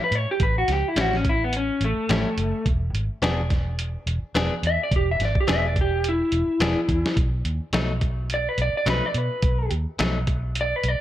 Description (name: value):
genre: straight-eighth soul blues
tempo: 106 BPM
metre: 4/4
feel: swing 56% on 16ths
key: unclear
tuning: A4 = 440 Hz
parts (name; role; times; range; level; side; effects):
- electric guitar through a small old amp; melody; 0.0-11.0 s; A3 to E5; -24 LUFS; equal; none
- direct-recorded clean electric guitar; stabs; 0.0-10.2 s; A2 to G#4; -30 LUFS; left 3 dB; spring reverb, slapback echo
- vintage muted fingered electric bass; bass; 0.1-11.0 s; E1 to B2; -25 LUFS; equal; none
- lo-fi sampler-style drum kit; drums; 0.1-11.0 s; hi-hat, kick drum, snare drum; -25 LUFS; equal; none
room: digital ambience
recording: none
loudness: -21 LUFS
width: side -13 dB against mid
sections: 0.0-11.0 A section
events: clean electric guitar solo 0.0-11.0; drum fill 6.9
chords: 0.0 A7; 2.7 E7; 7.2 B7